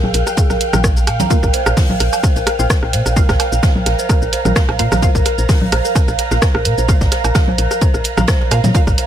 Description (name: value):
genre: minimal techno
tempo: 129 BPM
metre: 4/4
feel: swing 54% on 16ths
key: unclear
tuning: A4 = 440 Hz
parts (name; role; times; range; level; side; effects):
- dark detuned synth bell; riff; 0.0-9.0 s; Ab4 to Bb5; -22 LUFS; equal; chorus, phaser, sidechain pumping, tape echo
- woody FM bass; bass; 0.0-8.9 s; Bb1 to Bb2; -18 LUFS; equal; sidechain pumping
- techno drum kit; percussion; 0.0-9.0 s; congas, rim click, toms, woodblock; -20 LUFS; right 1 dB; overdrive, dub echo
- ethereal airy pad; texture; 0.0-9.1 s; F5 to Bb5; -22 LUFS; right 4 dB; ensemble chorus, built-in reverb, sidechain pumping
- punchy analog drum machine; drums; 0.1-9.1 s; cabasa, hi-hat, rim click; -21 LUFS; equal; none
- street-band drum kit; drums; 0.1-9.1 s; hi-hat, ride cymbal, snare drum; -29 LUFS; right 2 dB; high-pass filter on cymbals, high-pass filter on hats, high-pass filter on snare, high-pass filter on room
- electronic kick drum; drums; 0.4-9.0 s; none; -15 LUFS; equal; none
- filtered dub chord stab; stabs; 1.3-8.8 s; Bb3 to F5; -26 LUFS; right 2 dB; phaser, dub echo
room: little or no reverb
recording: none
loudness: -12 LUFS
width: side -10 dB against mid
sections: 0.0-9.1 A section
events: none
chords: 0.0 Bb5